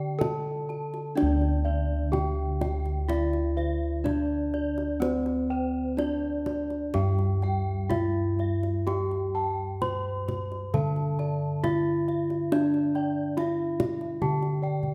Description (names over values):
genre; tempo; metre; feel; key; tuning
Javanese gamelan; 63 BPM; 4/4; uneven beats; D slendro; A4 = 437 Hz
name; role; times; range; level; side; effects
gamelan-type bronze metallophone; melody; 0.0-14.9 s; C4-25c to C5-25c; -32 LUFS; equal; none
gamelan-type bossed gongs; arpeggios; 0.0-14.9 s; C5-25c to C6-25c; -40 LUFS; equal; none
gamelan-type bronze metallophone; arpeggios; 0.0-14.9 s; C5-25c to C6-25c; -40 LUFS; equal; none
gamelan-type bossed gongs; bass; 0.0-14.9 s; D2 to C5-25c; -31 LUFS; equal; none
kendang; percussion; 0.2-14.9 s; none; -37 LUFS; equal; none
room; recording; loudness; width
moderate recital hall reverb, RT60 1.5 s; none; -28 LUFS; mono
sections
0.0-14.9 A section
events
none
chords
none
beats
0.20 | 1.17 2.13 3.09 4.06 | 5.02 5.98 6.94 7.91 | 8.87 9.82 10.74 11.65 | 12.52 13.38 14.22